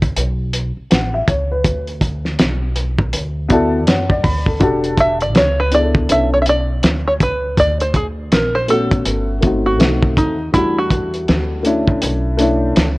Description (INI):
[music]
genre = hip hop, jazz-hop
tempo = 81 BPM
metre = 4/4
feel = swing 61% on 16ths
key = E dorian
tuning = A4 = 444 Hz
[part]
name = upright bass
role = bass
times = 0.0-13.0 s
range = E1 to F#2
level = -21 LUFS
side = equal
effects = transformer saturation
[part]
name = cloth-damped thuddy drum kit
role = drums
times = 0.0-13.0 s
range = hi-hat, kick drum, snare drum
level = -16 LUFS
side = equal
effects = none
[part]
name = dark upright piano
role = accompaniment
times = 0.9-12.9 s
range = G3 to B5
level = -18 LUFS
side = left 2 dB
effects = none
[part]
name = open-back banjo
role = melody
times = 5.0-11.8 s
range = D#4 to E5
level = -17 LUFS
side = right 1 dB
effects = none
[sound]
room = light reverb, small room ambience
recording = worn, warbling old tape, cassette tape, warbly pitch drift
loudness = -14 LUFS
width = side -21 dB against mid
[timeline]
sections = 0.0-4.6 A section; 4.6-13.0 B section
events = upright piano fill 3.1-4.6; five-string banjo solo 4.6-13.0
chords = 0.0 A69; 1.6 D6; 4.6 Em11; 6.1 Bm11; 7.6 D; 9.1 Gmaj9#11; 9.8 B7b9; 10.5 Em11; 12.0 Bm11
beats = 0.17 0.91 | 1.65 2.39 3.13 3.87 | 4.61 5.35 6.09 6.83 | 7.58 8.32 9.06 9.80 | 10.54 11.28 12.02 12.76